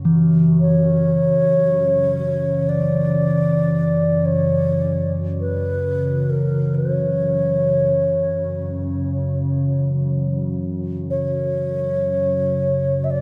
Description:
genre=world meditative, free-time meditation music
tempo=free time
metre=none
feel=none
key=unclear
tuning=A4 = 437 Hz
part: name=glassy FM pad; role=drone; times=0.0-13.2 s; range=F#2 to C#3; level=-24 LUFS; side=equal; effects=ensemble chorus, built-in reverb
part: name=quartz singing bowl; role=texture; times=0.1-7.8 s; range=E3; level=-24 LUFS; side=equal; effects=none
part: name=mellow wooden-headed alto flute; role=melody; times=0.6-13.2 s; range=A#4 to E5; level=-23 LUFS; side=equal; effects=delay
room=wet cathedral reverb, RT60 5.8 s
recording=none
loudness=-19 LUFS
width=mono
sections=0.0-13.2 A section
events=none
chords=none

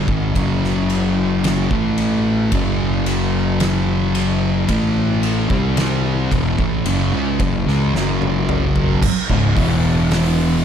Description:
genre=stoner and doom metal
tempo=55 BPM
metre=4/4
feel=straight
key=unclear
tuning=A4 = 440 Hz
part: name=thick fuzz guitar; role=riff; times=0.0-10.6 s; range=C#2 to B#3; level=-20 LUFS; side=left 8 dB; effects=distortion
part: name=thick fuzz guitar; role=riff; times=0.0-10.6 s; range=C#2 to B#3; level=-21 LUFS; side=right 10 dB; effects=distortion
part: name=fuzz fingered electric bass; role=bass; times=0.0-10.6 s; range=C#1 to C#2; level=-22 LUFS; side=equal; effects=overdrive, tube saturation
part: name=oversized low-tuned drum kit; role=drums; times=0.1-10.4 s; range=crash cymbal, hi-hat, kick drum, ride cymbal, snare drum, toms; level=-22 LUFS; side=equal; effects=none
room=light reverb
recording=dark, warm production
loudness=-15 LUFS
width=side -8 dB against mid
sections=0.0-9.0 A section; 9.0-10.6 B section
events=drum fill 7.9-9.0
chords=0.1 G#5; 0.3 F#5; 9.0 C#5; 9.6 E5

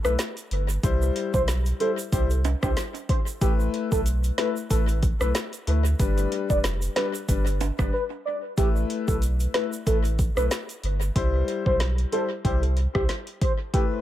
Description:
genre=dancehall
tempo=93 BPM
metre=4/4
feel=swing 56% on 16ths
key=unclear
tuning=A4 = 441 Hz
part: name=warm velvety synth lead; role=melody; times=0.0-13.8 s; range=G4 to D5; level=-29 LUFS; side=right 1 dB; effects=chorus, analog delay
part: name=warm concert grand piano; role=accompaniment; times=0.0-14.0 s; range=G3 to C5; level=-30 LUFS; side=left 6 dB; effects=sidechain pumping, analog delay
part: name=saturated sub bass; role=bass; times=0.0-13.1 s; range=F1 to D2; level=-24 LUFS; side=equal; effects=none
part: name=afro-pop drum kit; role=drums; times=0.0-13.9 s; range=hi-hat, kick drum, rim click, snare drum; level=-26 LUFS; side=equal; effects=overdrive, analog delay
part: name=tube shaker and timbales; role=percussion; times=0.1-11.1 s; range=none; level=-36 LUFS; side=right 8 dB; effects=analog delay
room=little or no reverb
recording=echo-heavy mix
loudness=-22 LUFS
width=side -13 dB against mid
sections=0.0-14.0 A section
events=break 7.9-8.6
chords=0.0 Asus2; 0.8 C; 3.4 Asus2; 6.0 G; 8.6 Asus2; 11.2 C

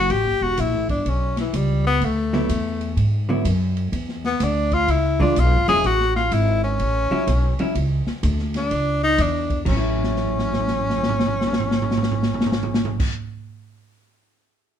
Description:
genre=jazz, small-group swing and bop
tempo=125 BPM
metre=4/4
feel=swing 66% on 8ths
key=A major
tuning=A4 = 439 Hz
part: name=clear tenor saxophone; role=melody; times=0.0-13.1 s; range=E3 to G#4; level=-22 LUFS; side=left 2 dB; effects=plate reverb
part: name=upright bass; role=bass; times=0.0-13.1 s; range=E1 to G#2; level=-22 LUFS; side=equal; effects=none
part: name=open jazz drum kit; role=drums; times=0.1-13.1 s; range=crash cymbal, hi-hat, kick drum, ride cymbal, snare drum, toms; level=-26 LUFS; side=right 1 dB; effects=none
part: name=vintage hollow-body jazz guitar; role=accompaniment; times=2.3-13.2 s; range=D3 to F4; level=-25 LUFS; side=equal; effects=none
room=moderate studio reverb, RT60 0.8 s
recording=heard from further back in the room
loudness=-18 LUFS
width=side -9 dB against mid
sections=0.0-9.7 A section; 9.7-13.5 B section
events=drum fill 9.9-13.0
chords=0.1 A9; 2.0 D69; 3.9 E7b9; 5.8 A; 9.7 A6

